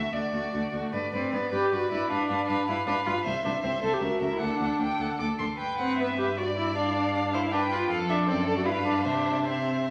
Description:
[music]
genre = quick classical-period movement for string quartet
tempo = 154 BPM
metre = 3/4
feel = rubato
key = G major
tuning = A4 = 444 Hz
[part]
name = rich violin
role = melody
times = 0.0-9.9 s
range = D5 to D6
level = -35 LUFS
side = equal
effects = none
[part]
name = rich violin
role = second line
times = 0.0-9.9 s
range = F#4 to D5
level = -35 LUFS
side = equal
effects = none
[part]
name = warm viola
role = accompaniment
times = 0.0-9.9 s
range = A3 to A4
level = -31 LUFS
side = equal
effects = none
[part]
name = warm cello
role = bass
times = 0.1-9.9 s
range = C2 to C3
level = -35 LUFS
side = equal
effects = none
[sound]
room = wet recital hall reverb, RT60 1.6 s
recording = none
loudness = -28 LUFS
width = mono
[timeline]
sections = 0.9-9.9 A section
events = none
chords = 0.0 D; 0.9 G; 2.1 G7; 3.3 C; 4.0 F#7; 4.4 D; 5.6 G; 6.8 G7; 7.9 F; 8.3 D7/F#; 8.7 G7; 9.1 C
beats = 0.13 0.54 | 0.94 1.33 1.72 | 2.11 2.49 2.87 | 3.26 3.64 4.01 | 4.40 4.80 5.20 | 5.60 5.99 6.38 | 6.76 7.15 7.53 | 7.91 8.29 8.67 | 9.06 9.46 9.86

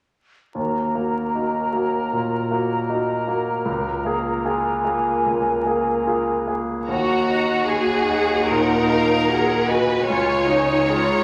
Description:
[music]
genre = cinematic, emotional film score for orchestra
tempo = 76 BPM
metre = 4/4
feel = rubato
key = Eb minor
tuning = A4 = 440 Hz
[part]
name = dark clarinet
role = second line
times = 0.5-6.5 s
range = F4 to Gb4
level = -34 LUFS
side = equal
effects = none
[part]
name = mellow hollow silver concert flute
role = second line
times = 0.5-6.6 s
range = Ab5 to Bb5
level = -28 LUFS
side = equal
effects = none
[part]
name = clear concert grand piano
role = accompaniment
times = 0.5-11.2 s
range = Db2 to Ab4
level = -26 LUFS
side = equal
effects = none
[part]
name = mellow cor anglais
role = second line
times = 0.6-6.5 s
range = Bb4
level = -30 LUFS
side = equal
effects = none
[part]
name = rich studio violin section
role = melody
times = 6.9-11.2 s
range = F5 to Bb5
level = -30 LUFS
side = equal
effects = none
[part]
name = clear studio violin section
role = second line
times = 6.9-11.2 s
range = Gb4 to Db5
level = -23 LUFS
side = equal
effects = none
[part]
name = clear studio viola section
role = accompaniment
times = 6.9-11.2 s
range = Eb4 to Ab4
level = -26 LUFS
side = equal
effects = none
[part]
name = rich studio cello section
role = bass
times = 6.9-11.2 s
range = Db2 to Eb2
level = -30 LUFS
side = equal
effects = none
[sound]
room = wet recital hall reverb, RT60 1.5 s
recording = vinyl crackle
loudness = -21 LUFS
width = mono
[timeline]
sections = 0.5-6.9 A section; 6.9-11.2 B section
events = none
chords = 0.5 Ebm; 3.7 Bbm7/Db; 6.9 Ebm; 10.1 Bbm7/Db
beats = | 0.54 1.34 2.13 2.90 | 3.67 4.46 5.26 6.07 | 6.89 7.69 8.48 9.28 | 10.07 10.87

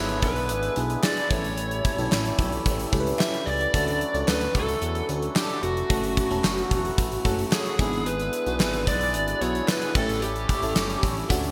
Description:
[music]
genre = 1980s-style pop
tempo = 111 BPM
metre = 4/4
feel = straight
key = unclear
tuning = A4 = 440 Hz
[part]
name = lead guitar through a small cranked amp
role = melody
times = 0.0-11.0 s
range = F#4 to E5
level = -31 LUFS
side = equal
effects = overdrive, digital delay
[part]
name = FM electric piano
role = accompaniment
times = 0.0-11.5 s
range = A3 to B4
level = -34 LUFS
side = equal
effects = chorus, phaser
[part]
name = mellow accordion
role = sustained chords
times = 0.0-11.5 s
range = D3 to F#4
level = -35 LUFS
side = equal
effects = none
[part]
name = fat analog bass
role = bass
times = 0.0-11.5 s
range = E1 to E2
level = -33 LUFS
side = equal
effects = none
[part]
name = gated 80s drum kit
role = drums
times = 0.1-11.5 s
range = crash cymbal, hi-hat, kick drum, snare drum, tambourine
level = -29 LUFS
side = equal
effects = none
[part]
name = mellow synth brass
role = stabs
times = 0.2-11.1 s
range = C#4 to C#5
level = -41 LUFS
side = equal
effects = none
[part]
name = group handclap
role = percussion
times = 1.0-10.9 s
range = none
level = barely audible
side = none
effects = none
[sound]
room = moderate lush hall reverb, RT60 2.6 s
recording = bright 1980s-style digital production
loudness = -25 LUFS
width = mono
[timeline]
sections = 0.0-11.5 A section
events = none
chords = 0.0 E7/G#; 1.3 A7; 3.7 Dmaj7; 5.9 F#m; 7.8 E7/G#; 10.0 A7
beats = 0.49 1.03 | 1.57 2.12 2.65 3.20 | 3.74 4.28 4.82 5.36 | 5.90 6.44 6.98 7.52 | 8.06 8.60 9.14 9.68 | 10.22 10.76 11.30

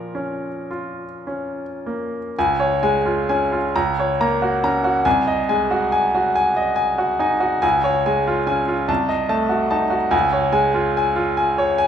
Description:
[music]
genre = classical, romantic nocturne for solo piano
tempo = 34-49 BPM (dotted quarters)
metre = 12/8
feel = rubato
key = Db major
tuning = A4 = 441 Hz
[part]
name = bright grand piano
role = solo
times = 0.0-11.9 s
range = C2 to Bb5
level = -17 LUFS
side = equal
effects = none
[sound]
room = wet recital hall reverb, RT60 1.4 s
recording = minimal, uncompressed stereo recording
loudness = -17 LUFS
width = side -8 dB against mid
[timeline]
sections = 0.0-2.4 A section; 2.4-11.9 B section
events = none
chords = 0.0 Bbm; 2.4 Db; 3.7 Gb/Db; 5.1 Ab7/C; 7.6 Db; 8.9 Cdim7; 10.1 Db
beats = 0.70 | 2.36 3.74 5.06 6.36 | 7.63 8.89 10.14 11.38

